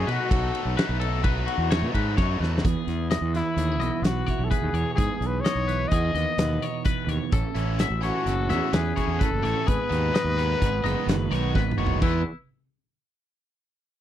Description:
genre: math rock and midwest emo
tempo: 128 BPM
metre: 5/4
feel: straight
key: unclear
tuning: A4 = 440 Hz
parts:
  - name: breathy trumpet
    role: melody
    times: 0.0-12.2 s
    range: E4 to D#5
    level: -28 LUFS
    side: left 3 dB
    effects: slapback echo
  - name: twangy electric guitar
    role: arpeggios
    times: 0.0-12.2 s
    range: E4 to E5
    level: -32 LUFS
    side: left 9 dB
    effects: lush chorus, slapback echo
  - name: biting overdriven guitar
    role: riff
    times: 0.0-2.6, 7.5-12.2 s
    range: B2 to E4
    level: -32 LUFS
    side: right 1 dB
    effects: none
  - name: fuzz fingered electric bass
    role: bass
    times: 0.0-12.2 s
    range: F#1 to B2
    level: -27 LUFS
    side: equal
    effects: overdrive
  - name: loose indie drum kit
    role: drums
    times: 0.1-12.1 s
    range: crash cymbal, hi-hat, kick drum, ride cymbal, snare drum, toms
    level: -26 LUFS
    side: equal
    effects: none
  - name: twelve-string electric guitar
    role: accompaniment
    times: 2.6-12.2 s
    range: E2 to G#4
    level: -31 LUFS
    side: right 10 dB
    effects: none
room: little or no reverb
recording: dry, close 1970s-style studio recording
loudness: -22 LUFS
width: side -11 dB against mid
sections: 0.0-2.6 A section; 2.6-12.0 B section; 12.0-14.0 C section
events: drum fill 2.4, 11.5-12.0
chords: 0.0 B7sus4; 7.3 A6; 9.7 G#m7; 12.0 E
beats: | 0.32 0.78 1.25 1.71 2.18 | 2.65 3.11 3.58 4.05 4.52 | 4.99 5.46 5.92 6.39 6.86 | 7.33 7.80 8.27 8.73 9.20 | 9.67 10.14 10.61 11.08 11.54 | 12.01

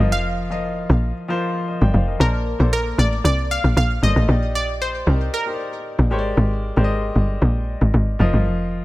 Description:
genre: amapiano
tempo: 115 BPM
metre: 4/4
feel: straight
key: Bb major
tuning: A4 = 439 Hz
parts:
  - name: analog pluck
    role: melody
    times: 0.0-6.1 s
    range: Bb4 to G5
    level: -24 LUFS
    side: equal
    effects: chorus, digital delay
  - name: warm grand piano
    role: accompaniment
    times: 0.0-8.8 s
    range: F3 to A5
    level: -26 LUFS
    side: left 2 dB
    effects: none
  - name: tight log drum bass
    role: bass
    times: 0.0-8.8 s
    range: F1 to C2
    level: -18 LUFS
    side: equal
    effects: none
room: small room ambience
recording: none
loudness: -17 LUFS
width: side -18 dB against mid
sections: 0.0-2.2 A section; 2.2-8.8 B section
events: drop 0.0-2.2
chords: 0.0 F7sus4; 2.2 Bbmaj9; 4.3 Ebmaj7/Bb; 6.1 Abmaj9#11; 8.2 F7sus4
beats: | 0.11 0.64 1.16 1.68 | 2.20 2.72 3.24 3.77 | 4.29 4.81 5.33 5.85 | 6.37 6.90 7.42 7.94 | 8.46

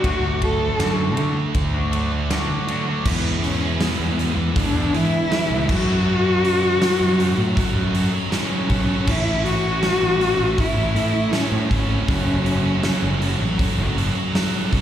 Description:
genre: quiet-loud alternative rock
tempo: 80 BPM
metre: 4/4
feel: straight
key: unclear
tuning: A4 = 441 Hz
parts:
  - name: dark cello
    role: melody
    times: 0.0-13.9 s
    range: B3 to A4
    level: -23 LUFS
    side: left 1 dB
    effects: slapback echo
  - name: twangy electric guitar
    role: arpeggios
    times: 0.0-3.0 s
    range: D3 to F#4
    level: -29 LUFS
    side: left 2 dB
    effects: wide subtle chorus, slapback echo
  - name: scooped high-gain guitar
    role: riff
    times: 0.0-14.8 s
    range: D3 to A4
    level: -27 LUFS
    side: right 11 dB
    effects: distortion, slapback echo
  - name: thick fuzz guitar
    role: riff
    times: 0.0-14.8 s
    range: D3 to A4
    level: -28 LUFS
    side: left 9 dB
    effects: distortion, slapback echo
  - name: fuzz fingered electric bass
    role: bass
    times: 0.0-14.8 s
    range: F#1 to E3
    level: -22 LUFS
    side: equal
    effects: overdrive
  - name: huge arena drum kit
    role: drums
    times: 0.0-14.8 s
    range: crash cymbal, hi-hat, kick drum, ride cymbal, snare drum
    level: -25 LUFS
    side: equal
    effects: none
room: studio ambience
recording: live gig heard through the venue's PA, recital hall reverb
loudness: -18 LUFS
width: side -10 dB against mid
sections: 0.0-3.1 A section; 3.1-14.8 B section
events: none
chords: 0.0 D; 3.1 E; 5.7 F#m; 9.1 A; 12.1 F#m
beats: | 0.04 0.80 1.55 2.31 | 3.06 3.81 4.56 5.32 | 6.07 6.82 7.57 8.32 | 9.07 9.82 10.57 11.33 | 12.08 12.83 13.59 14.34

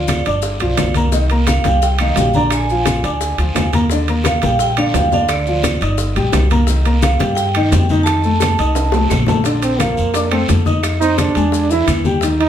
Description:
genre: Afro-Cuban jazz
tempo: 173 BPM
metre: 4/4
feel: straight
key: Bb major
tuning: A4 = 440 Hz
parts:
  - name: vibraphone with medium hard mallets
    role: melody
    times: 0.0-9.1 s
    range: D5 to Bb5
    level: -20 LUFS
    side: right 4 dB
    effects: none
  - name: warm upright piano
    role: accompaniment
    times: 0.0-12.5 s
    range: D3 to Eb6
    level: -20 LUFS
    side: left 2 dB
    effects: none
  - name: upright bass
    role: bass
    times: 0.0-12.5 s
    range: G1 to G2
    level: -18 LUFS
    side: equal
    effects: none
  - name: bongos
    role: percussion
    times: 0.1-12.5 s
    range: none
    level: -27 LUFS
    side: left 5 dB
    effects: none
  - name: claves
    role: percussion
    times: 0.1-12.1 s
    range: none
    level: -31 LUFS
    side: right 4 dB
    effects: none
  - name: congas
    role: percussion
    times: 0.1-12.5 s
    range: none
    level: -22 LUFS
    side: left 3 dB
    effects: none
  - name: guiro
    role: percussion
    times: 0.1-12.5 s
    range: none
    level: -31 LUFS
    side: right 2 dB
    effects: none
  - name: maracas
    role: percussion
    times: 0.1-12.4 s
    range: none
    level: -30 LUFS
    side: left 7 dB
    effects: none
  - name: timbales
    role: percussion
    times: 0.1-12.5 s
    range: none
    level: -24 LUFS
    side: right 6 dB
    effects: none
  - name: warm trombone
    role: second line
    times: 9.6-12.5 s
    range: Bb3 to E4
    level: -17 LUFS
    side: right 4 dB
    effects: none
room: wet studio reverb, RT60 0.6 s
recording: heard from further back in the room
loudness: -13 LUFS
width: side -10 dB against mid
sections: 0.0-9.5 A section; 9.5-12.5 B section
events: drum fill 8.8-9.5; trombone solo 9.5-12.5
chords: 0.4 G7; 1.1 Cm11; 2.5 Bb7; 3.9 Ebmaj9; 6.0 Eb6/G; 6.7 Cm7; 8.1 F7; 9.5 Bbmaj7; 10.8 Fm7; 11.5 E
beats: 0.09 0.43 0.78 | 1.13 1.47 1.82 2.17 | 2.51 2.86 3.21 3.55 | 3.90 4.25 4.59 4.94 | 5.29 5.63 5.98 6.33 | 6.68 7.02 7.37 7.72 | 8.06 8.41 8.76 9.11 | 9.45 9.80 10.15 10.49 | 10.84 11.19 11.53 11.88 | 12.23

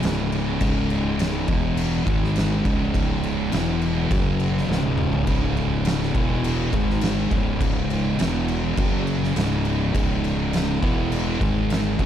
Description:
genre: stoner and doom metal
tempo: 103 BPM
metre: 4/4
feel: straight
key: C# minor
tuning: A4 = 440 Hz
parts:
  - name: string machine, cellos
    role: sustained chords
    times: 0.0-12.1 s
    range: C#3 to D#5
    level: -36 LUFS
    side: equal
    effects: none
  - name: thick fuzz guitar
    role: riff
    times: 0.0-12.1 s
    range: C#2 to G#3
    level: -26 LUFS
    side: left 9 dB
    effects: distortion
  - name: thick fuzz guitar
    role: riff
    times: 0.0-12.1 s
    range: C#2 to G#3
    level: -26 LUFS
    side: right 8 dB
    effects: distortion
  - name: fuzz fingered electric bass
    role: bass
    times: 0.0-12.1 s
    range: C#1 to G#1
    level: -27 LUFS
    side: equal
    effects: overdrive
  - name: oversized low-tuned drum kit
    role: drums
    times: 0.0-12.1 s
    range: crash cymbal, kick drum, snare drum, toms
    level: -25 LUFS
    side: equal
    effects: none
room: little or no reverb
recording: dark, warm production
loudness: -20 LUFS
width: side -10 dB against mid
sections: 0.0-12.1 A section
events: drum fill 4.7-5.3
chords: 0.0 C#5; 1.5 E5; 2.1 G#5; 2.7 C#5; 3.5 E5; 4.1 F#5; 4.7 C#5; 6.2 E5; 6.7 G#5; 7.3 C#5; 8.2 E5; 8.8 F#5; 9.4 C#5; 10.8 E5; 11.4 G#5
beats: 0.03 | 0.61 1.20 1.78 2.36 | 2.95 3.53 4.11 4.70 | 5.28 5.86 6.45 7.03 | 7.61 8.20 8.78 9.36 | 9.95 10.53 11.11 11.70

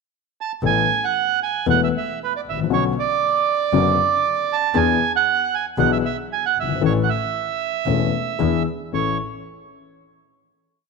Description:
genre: tango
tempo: 116 BPM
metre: 4/4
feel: rubato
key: A major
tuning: A4 = 440 Hz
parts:
  - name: bandoneon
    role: melody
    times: 0.4-9.2 s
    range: B4 to A5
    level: -20 LUFS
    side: right 9 dB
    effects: none
  - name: dark concert grand piano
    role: accompaniment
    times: 0.6-9.1 s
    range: E1 to A4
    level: -22 LUFS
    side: left 10 dB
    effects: none
  - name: clear double bass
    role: bass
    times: 0.6-9.1 s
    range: E1 to E2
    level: -27 LUFS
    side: right 2 dB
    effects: none
room: wet echo chamber reverb, RT60 2.1 s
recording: 1960s-style stereo with parts hard left and right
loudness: -18 LUFS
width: side -4 dB against mid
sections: 0.0-0.6 pickup bar; 0.6-8.9 A section; 8.9-10.9 final chord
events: none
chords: 0.0 N.C.; 0.6 Asus2; 2.7 Bmadd9; 4.8 E7; 6.8 A; 8.4 E7; 8.9 A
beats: 0.11 | 0.63 1.15 1.67 2.19 | 2.71 3.22 3.73 4.25 | 4.76 5.27 5.79 6.31 | 6.83 7.35 7.87 8.40 | 8.93

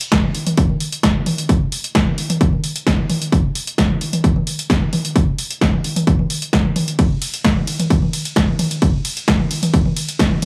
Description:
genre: techno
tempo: 131 BPM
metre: 4/4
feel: straight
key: none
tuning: none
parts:
  - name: techno drum kit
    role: drums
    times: 0.0-10.4 s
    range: hi-hat, ride cymbal, snare drum, toms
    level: -21 LUFS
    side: equal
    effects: overdrive
  - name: electronic kick drum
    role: drums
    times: 0.1-10.3 s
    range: none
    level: -19 LUFS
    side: equal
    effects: overdrive
room: light reverb, digital ambience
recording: small room ambience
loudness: -18 LUFS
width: mono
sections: 0.0-10.4 A section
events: none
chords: none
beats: 0.12 0.58 1.03 | 1.49 1.95 2.41 2.87 | 3.32 3.78 4.24 4.70 | 5.16 5.61 6.07 6.53 | 6.99 7.45 7.90 8.36 | 8.82 9.28 9.74 10.19

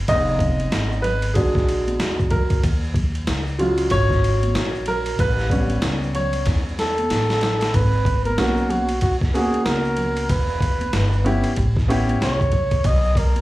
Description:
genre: hip hop, jazz-hop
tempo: 94 BPM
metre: 4/4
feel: swing 61% on 16ths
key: unclear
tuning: A4 = 440 Hz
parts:
  - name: upright bass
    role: bass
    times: 0.0-13.4 s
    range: E1 to E2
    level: -23 LUFS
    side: equal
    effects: none
  - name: warm grand piano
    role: accompaniment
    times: 0.1-12.3 s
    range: F#3 to Eb5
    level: -22 LUFS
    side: equal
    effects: slapback echo
  - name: boom bap sampler-style drum kit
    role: drums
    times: 0.1-13.4 s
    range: hi-hat, kick drum, ride cymbal, snare drum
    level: -23 LUFS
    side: equal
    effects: none
  - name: tube shaker and congas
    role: percussion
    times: 0.1-13.4 s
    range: none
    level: -35 LUFS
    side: left 2 dB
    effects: none
  - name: trumpet with bucket mute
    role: melody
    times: 6.8-13.4 s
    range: F#4 to D#5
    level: -23 LUFS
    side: right 1 dB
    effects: slapback echo
room: light reverb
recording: live gig heard through the venue's PA, club reverb, vinyl crackle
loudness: -18 LUFS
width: side -17 dB against mid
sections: 0.0-7.7 A section; 7.7-13.4 B section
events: grand piano solo 0.0-7.7; drum fill 6.5-7.7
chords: 0.1 Fm7b5; 1.4 A#7b13; 2.6 D#m11; 5.2 A9; 7.7 G#m11; 10.3 Em; 11.6 A9; 12.8 Bmaj7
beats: | 0.08 0.72 1.36 2.00 | 2.64 3.27 3.91 4.55 | 5.19 5.83 6.47 7.10 | 7.74 8.38 9.02 9.66 | 10.29 10.93 11.57 12.21 | 12.85

